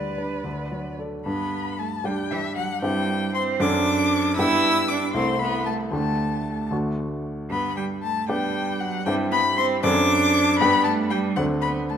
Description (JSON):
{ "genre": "quick classical-period movement for piano trio", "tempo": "77 BPM (dotted quarters)", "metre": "6/8", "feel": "straight", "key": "G major", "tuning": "A4 = 440 Hz", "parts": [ { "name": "rich violin", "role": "melody", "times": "0.0-12.0 s", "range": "D5 to E6", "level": "-25 LUFS", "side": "left 6 dB", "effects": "none" }, { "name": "clear cello", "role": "second line", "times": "0.0-12.0 s", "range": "E3 to B4", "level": "-25 LUFS", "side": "right 4 dB", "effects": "none" }, { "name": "warm baby grand piano", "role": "accompaniment", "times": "0.0-12.0 s", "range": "C2 to B4", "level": "-25 LUFS", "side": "equal", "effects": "none" } ], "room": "wet concert hall reverb, RT60 1.9 s", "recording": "none", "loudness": "-21 LUFS", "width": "side -8 dB against mid", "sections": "0.0-1.3 A section; 1.3-12.0 B section", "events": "none", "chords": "0.5 D; 1.3 G; 2.8 C/G; 3.6 D7/F#; 4.4 G; 5.1 Am/C; 5.9 Dsus4; 6.7 D; 7.5 G; 9.1 C/G; 9.8 D7/F#; 10.6 G; 11.4 D5" }